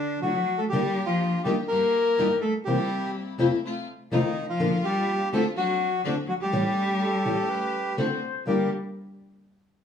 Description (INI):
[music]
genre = tango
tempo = 124 BPM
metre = 4/4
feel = rubato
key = G minor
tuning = A4 = 439 Hz
[part]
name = bandoneon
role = melody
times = 0.0-8.7 s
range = D4 to Bb4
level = -26 LUFS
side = equal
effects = none
[part]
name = rich cello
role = second line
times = 0.0-8.7 s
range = D3 to Bb3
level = -29 LUFS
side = left 2 dB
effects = none
[part]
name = nylon-string guitar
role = accompaniment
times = 0.2-8.7 s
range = F2 to G4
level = -26 LUFS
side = left 2 dB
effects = none
[part]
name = warm chamber string section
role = stabs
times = 0.7-8.7 s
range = G2 to G4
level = -34 LUFS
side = left 1 dB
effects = none
[part]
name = reedy silver concert flute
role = second line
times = 7.0-8.7 s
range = A4 to C5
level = -32 LUFS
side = left 3 dB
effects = none
[sound]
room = moderate large studio reverb, RT60 1.2 s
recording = small room ambience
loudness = -23 LUFS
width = side -8 dB against mid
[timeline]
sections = 0.0-8.5 A section; 8.5-9.8 B section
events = none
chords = 0.0 D; 0.7 Gm; 1.7 Eb/G; 2.7 C7; 3.6 F; 4.6 Bb; 5.6 D7; 6.5 A7; 8.0 D7; 8.5 Gm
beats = 0.24 | 0.73 1.21 1.70 2.18 | 2.67 3.15 3.63 4.12 | 4.60 5.08 5.56 6.04 | 6.53 7.01 7.50 7.99 | 8.47